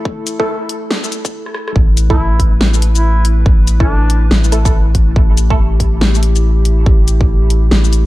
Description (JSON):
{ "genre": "deep dubstep", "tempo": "141 BPM", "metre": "4/4", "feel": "swing 61% on 16ths, half-time", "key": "unclear", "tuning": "A4 = 440 Hz", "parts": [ { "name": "dark analog pad", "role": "sustained chords", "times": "0.0-8.1 s", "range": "A3 to B4", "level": "-23 LUFS", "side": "left 1 dB", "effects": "wide subtle chorus" }, { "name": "electronic kick drum", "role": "drums", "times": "0.1-7.3 s", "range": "none", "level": "-13 LUFS", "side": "equal", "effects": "none" }, { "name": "dubstep drum kit", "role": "drums", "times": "0.3-8.0 s", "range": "hi-hat, rim click, shaker, snare drum", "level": "-18 LUFS", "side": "left 1 dB", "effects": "none" }, { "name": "filtered dub chord stab", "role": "stabs", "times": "0.4-5.6 s", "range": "A3 to A4", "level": "-22 LUFS", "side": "right 2 dB", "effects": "phaser, analog chorus, dub echo" }, { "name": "soft dub sub bass", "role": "bass", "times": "1.8-8.1 s", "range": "A1", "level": "-12 LUFS", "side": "equal", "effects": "none" }, { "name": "clear duduk", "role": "melody", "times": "2.1-4.2 s", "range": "D4 to E4", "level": "-23 LUFS", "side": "right 1 dB", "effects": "dub echo" } ], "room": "little or no reverb", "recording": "dark, warm production, high-pass filter", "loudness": "-10 LUFS", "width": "side -17 dB against mid", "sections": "0.0-1.8 A section; 1.8-8.1 B section", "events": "build-up 0.0-1.8; filter sweep 0.0-1.8; break 1.3-1.8; drum fill 1.4-1.8; drop 1.8-8.1", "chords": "0.0 A5", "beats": "| 0.06 0.48 0.91 1.33 | 1.76 2.18 2.61 3.03 | 3.46 3.88 4.31 4.74 | 5.16 5.59 6.01 6.44 | 6.86 7.29 7.71" }